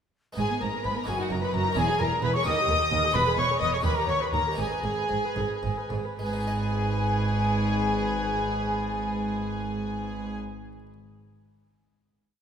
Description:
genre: classical, baroque-style concerto movement with solo episodes.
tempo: 70-88 BPM (dotted quarters).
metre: 6/8.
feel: straight.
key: G# minor.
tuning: A4 = 440 Hz.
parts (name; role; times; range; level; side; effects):
harpsichord; accompaniment; 0.3-10.9 s; D#2 to D#5; -37 LUFS; equal; none.
baroque flute; melody; 0.4-10.4 s; F#5 to D#6; -31 LUFS; left 1 dB; none.
rich chamber violin section; melody; 0.4-10.4 s; F#5 to D#6; -32 LUFS; left 3 dB; none.
warm chamber violin section; second line; 0.4-10.4 s; F#4 to D#5; -31 LUFS; equal; none.
dark chamber viola section; accompaniment; 0.4-10.4 s; G#3 to B4; -35 LUFS; right 3 dB; none.
dark chamber cello section; bass; 0.4-10.4 s; D#2 to G#2; -31 LUFS; right 1 dB; none.
rich studio double bass section; bass; 0.4-10.4 s; E1 to D#2; -32 LUFS; right 2 dB; none.
room: moderate concert hall reverb, RT60 2.3 s.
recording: minimal, uncompressed stereo recording.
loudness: -24 LUFS.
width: side -8 dB against mid.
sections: 0.4-6.2 ritornello; 6.2-9.6 final chord.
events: slowing down 2.5-6.2.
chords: 0.4 G#m; 1.1 D#m/F#; 1.8 C#m/E; 2.5 D#; 3.1 E; 3.8 D#7; 4.6 G#m.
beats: | 0.38 1.07 | 1.76 2.45 | 3.14 3.85 | 4.58 5.36 | 6.19 7.04 | 7.89 8.74.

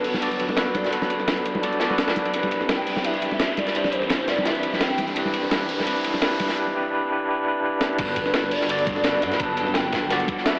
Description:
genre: liquid drum and bass.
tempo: 170 BPM.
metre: 4/4.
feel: swing 54% on 16ths.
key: G major.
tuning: A4 = 439 Hz.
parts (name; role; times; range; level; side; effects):
hollow clarinet-like synth lead; melody; 0.0-5.3, 8.2-10.6 s; B4 to B5; -31 LUFS; equal; ensemble chorus, dub echo.
overdriven tine electric piano; accompaniment; 0.0-10.6 s; F#3 to D5; -28 LUFS; equal; fast tremolo, dub echo.
shimmering ambient pad; sustained chords; 0.0-10.6 s; E3 to B5; -37 LUFS; equal; none.
dark detuned saw bass; bass; 0.0-10.3 s; D1 to G2; -36 LUFS; equal; none.
breakbeat sampler-style drum kit; drums; 0.0-10.6 s; crash cymbal, hi-hat, snare drum; -31 LUFS; equal; studio reverb, dub echo.
crunchy breakbeat drum kit; drums; 0.0-10.5 s; hi-hat, ride cymbal, snare drum; -30 LUFS; equal; high-pass filter on cymbals, studio reverb, high-pass filter on hats, high-pass filter on snare, high-pass filter on room, dub echo.
riser; sound effects; 2.2-6.6 s; none; -38 LUFS; equal; none.
congas; percussion; 0.1-6.5, 8.9-10.4 s; none; -36 LUFS; equal; dub echo.
electronic kick drum; drums; 8.0-10.4 s; none; -37 LUFS; equal; studio reverb.
room: moderate plate reverb, RT60 1.9 s, studio ambience.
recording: echo-heavy mix, AM radio sound.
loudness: -23 LUFS.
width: mono.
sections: 0.0-8.0 A section; 8.0-10.6 B section.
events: build-up 0.0-8.0; drum fill 7.8; drop 8.0-10.6.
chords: 0.0 Gmaj9; 2.3 Cmaj7; 8.0 Gmaj9.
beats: 0.22 0.57 | 0.93 1.28 1.63 1.99 | 2.34 2.69 3.04 3.40 | 3.75 4.10 4.46 4.81 | 5.16 5.52 5.87 6.22 | 6.58 6.93 7.28 7.63 | 7.99 8.34 8.69 9.04 | 9.40 9.75 10.10 10.46.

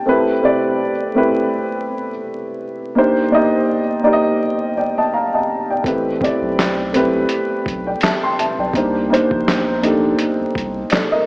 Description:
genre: lo-fi hip hop.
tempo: 83 BPM.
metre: 4/4.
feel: swing 56% on 16ths.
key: A minor.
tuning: A4 = 440 Hz.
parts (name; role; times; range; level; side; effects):
dark upright piano; accompaniment; 0.0-11.3 s; A3 to C6; -15 LUFS; equal; low-pass filter.
soft dub sub bass; bass; 5.8-10.8 s; A1 to C2; -29 LUFS; equal; none.
lo-fi sampler-style drum kit; drums; 5.8-11.1 s; handclaps, hi-hat, kick drum, snare drum; -21 LUFS; equal; none.
room: wet church reverb, RT60 3.3 s.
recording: dreamy mix soaked in reverb, vinyl crackle, small speaker sound.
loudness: -15 LUFS.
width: side -25 dB against mid.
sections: 0.0-11.3 A section.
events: none.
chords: 0.1 Am7; 3.0 Cm7; 5.8 Am7; 8.7 Cm7.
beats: | 0.06 0.79 1.51 2.23 | 2.95 3.68 4.40 5.12 | 5.85 6.57 7.29 8.01 | 8.74 9.46 10.18 10.91.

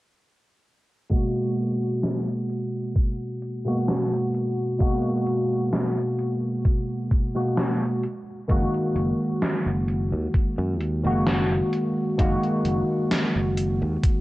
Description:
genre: vaporwave.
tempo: 65 BPM.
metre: 4/4.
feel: swing 53% on 16ths.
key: unclear.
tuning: A4 = 440 Hz.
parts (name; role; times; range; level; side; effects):
tine electric piano; accompaniment; 1.1-14.2 s; B2 to F#4; -24 LUFS; equal; analog chorus, tape echo.
electronic kick drum; drums; 1.1-14.2 s; none; -21 LUFS; equal; none.
gated 80s digital drum machine; drums; 1.1-14.2 s; hi-hat, snare drum; -27 LUFS; equal; gated reverb, gated reverb snare, overdrive.
sustaining fretless electric bass; bass; 8.5-14.0 s; F#1 to F#2; -26 LUFS; equal; none.
room: light reverb.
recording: dry, gritty hardware recording, cassette tape, low-pass filter.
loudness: -22 LUFS.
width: side -18 dB against mid.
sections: 1.1-14.2 A section.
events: filter sweep 1.1-14.2.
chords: 1.1 G#m9; 8.0 F#69.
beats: | 1.11 2.04 2.96 3.88 | 4.80 5.73 6.65 7.57 | 8.50 9.42 10.34 11.27 | 12.19 13.11 14.04.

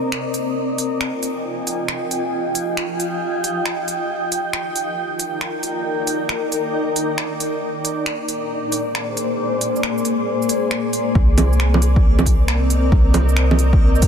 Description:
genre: future garage.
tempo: 136 BPM.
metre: 4/4.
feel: swing 67% on 16ths.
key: C minor.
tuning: A4 = 438 Hz.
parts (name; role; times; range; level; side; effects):
granular cloud pad; sustained chords; 0.0-14.1 s; Bb3 to Ab5; -21 LUFS; left 1 dB; built-in reverb, vintage 12-bit sampler grit, sidechain pumping.
deep house drum kit; drums; 0.1-14.1 s; bongos, finger snaps, hi-hat, shaker; -24 LUFS; right 2 dB; soft clipping on snare.
soft 808-style bass; bass; 11.2-14.1 s; C2; -16 LUFS; equal; tube saturation, sidechain pumping.
electronic kick drum; drums; 11.2-14.1 s; none; -15 LUFS; equal; none.
backwards swelling texture; texture; 12.1-14.1 s; Bb3 to Bb4; -31 LUFS; right 3 dB; built-in reverb.
room: light reverb, digital ambience.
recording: dense, heavily limited modern master.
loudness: -17 LUFS.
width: side -8 dB against mid.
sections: 0.0-11.2 A section; 11.2-14.1 B section.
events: none.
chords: 0.0 Cm9; 0.6 Fm9; 4.1 Ebmaj7; 7.6 Bb9; 11.2 Cm9.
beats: 0.12 | 0.56 1.01 1.45 1.89 | 2.33 2.77 3.21 3.65 | 4.09 4.54 4.98 5.42 | 5.86 6.30 6.74 7.18 | 7.62 8.06 8.51 8.95 | 9.39 9.83 10.27 10.71 | 11.15 11.59 12.04 12.48 | 12.92 13.36 13.80.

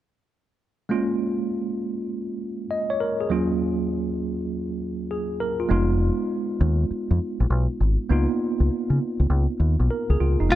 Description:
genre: R&B, new jack swing.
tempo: 100 BPM.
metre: 4/4.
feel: swing 66% on 16ths.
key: unclear.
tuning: A4 = 441 Hz.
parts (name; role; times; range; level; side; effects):
mellow tine electric piano; accompaniment; 0.9-10.6 s; Eb2 to Eb5; -25 LUFS; right 1 dB; medium stereo tremolo.
deep dub fingered electric bass; bass; 5.7-10.6 s; F1 to Db3; -20 LUFS; equal; none.
direct-recorded clean electric guitar; melody; 10.5-10.6 s; F4; -17 LUFS; left 1 dB; none.
room: little or no reverb.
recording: none.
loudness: -22 LUFS.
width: side -13 dB against mid.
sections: 0.9-10.5 A section.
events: none.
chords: 0.9 Bbm7; 3.3 Ebm9; 5.7 Fm7b5; 8.1 Db13.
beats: | 0.90 1.50 2.10 2.70 | 3.30 3.90 4.50 5.10 | 5.70 6.30 6.90 7.50 | 8.10 8.70 9.30 9.90 | 10.50.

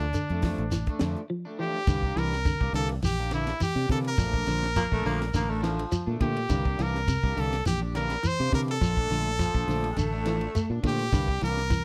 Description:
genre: afrobeat.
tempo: 104 BPM.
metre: 4/4.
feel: swing 54% on 16ths.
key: C mixolydian.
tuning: A4 = 440 Hz.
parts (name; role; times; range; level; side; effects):
brilliant trumpet; melody; 0.0-11.8 s; D4 to C5; -33 LUFS; equal; none.
electric guitar at the edge of break-up; stabs; 0.0-11.6 s; E3 to G4; -39 LUFS; equal; subtle chorus.
fingered electric bass; bass; 0.0-11.8 s; A1 to C3; -32 LUFS; equal; none.
tight funk drum kit; drums; 0.0-11.8 s; hi-hat, kick drum, ride cymbal, snare drum; -33 LUFS; equal; none.
semi-hollow electric guitar; arpeggios; 0.1-11.8 s; C3 to A3; -35 LUFS; equal; phaser.
shekere; percussion; 0.1-11.8 s; none; -34 LUFS; equal; none.
raspy baritone saxophone; second line; 4.8-10.7 s; F3 to Bb3; -35 LUFS; equal; none.
room: little or no reverb.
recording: dry, close 1970s-style studio recording.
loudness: -27 LUFS.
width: mono.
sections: 0.0-1.9 A section; 1.9-11.8 B section.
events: none.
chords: 0.0 Bbmaj7 (rootless); 1.9 C9; 4.2 Bbmaj7; 6.5 C9; 8.8 Bbmaj7; 11.1 C9.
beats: 0.15 0.73 1.30 | 1.88 2.46 3.04 3.61 | 4.19 4.77 5.35 5.92 | 6.50 7.08 7.66 8.24 | 8.81 9.39 9.97 10.55 | 11.13 11.71.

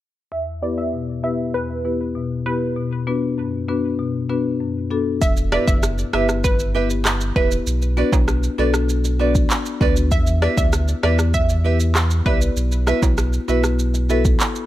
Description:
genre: dancehall.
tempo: 98 BPM.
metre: 4/4.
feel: straight.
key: E minor.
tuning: A4 = 439 Hz.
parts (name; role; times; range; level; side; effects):
analog pluck; melody; 0.3-12.4 s; B4 to E5; -26 LUFS; right 2 dB; chorus, low-pass filter, ping-pong delay.
marimba with medium mallets; accompaniment; 0.3-14.2 s; E2 to D5; -23 LUFS; left 4 dB; low-pass filter.
sub bass with octave; bass; 5.2-14.4 s; E1 to E2; -20 LUFS; equal; none.
afro-pop drum kit; drums; 5.2-14.5 s; handclaps, kick drum, rim click; -20 LUFS; equal; none.
maracas and timbales; percussion; 5.2-14.7 s; none; -30 LUFS; right 7 dB; none.
nylon-string guitar; arpeggios; 5.5-14.2 s; F#4 to E5; -24 LUFS; right 9 dB; none.
room: small room ambience.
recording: none.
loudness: -17 LUFS.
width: side -14 dB against mid.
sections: 0.3-5.2 A section; 5.2-14.7 B section.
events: filter sweep 0.3-5.2; hi-hats muted 5.2-14.7.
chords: 0.3 Em; 2.8 Bm; 5.2 Em; 7.7 Bm; 10.1 Em; 12.6 Bsus4.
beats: | 0.32 0.93 1.54 2.16 | 2.77 3.38 3.99 4.61 | 5.22 5.83 6.44 7.05 | 7.67 8.28 8.89 9.50 | 10.12 10.73 11.34 11.95 | 12.56 13.18 13.79 14.40.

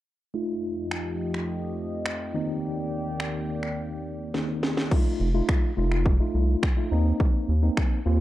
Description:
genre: dance-pop.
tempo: 105 BPM.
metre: 4/4.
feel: straight.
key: unclear.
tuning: A4 = 436 Hz.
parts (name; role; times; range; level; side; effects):
mellow tine electric piano; accompaniment; 0.3-8.2 s; Eb3 to F4; -29 LUFS; equal; medium stereo tremolo, sidechain pumping, low-pass filter.
sweeping resonant pad; sustained chords; 0.3-4.9 s; Eb2 to Eb5; -33 LUFS; equal; chorus, phaser, sidechain pumping, low-pass filter.
house drum kit; drums; 0.9-7.9 s; crash cymbal, finger snaps, kick drum, snare drum; -25 LUFS; equal; overdrive.
round analog bass; bass; 5.2-8.2 s; F1 to Eb2; -22 LUFS; equal; sidechain pumping.
room: digital ambience.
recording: dark, warm production.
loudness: -24 LUFS.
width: side -15 dB against mid.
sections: 0.3-4.9 A section; 4.9-8.2 B section.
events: filter sweep 0.3-4.9; drum fill 4.3-4.9.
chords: 0.3 F7; 2.3 Cm7/Eb; 4.9 F7; 6.9 Cm7/Eb.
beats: | 0.34 0.91 1.49 2.06 | 2.63 3.20 3.77 4.34 | 4.91 5.49 6.06 6.63 | 7.20 7.77.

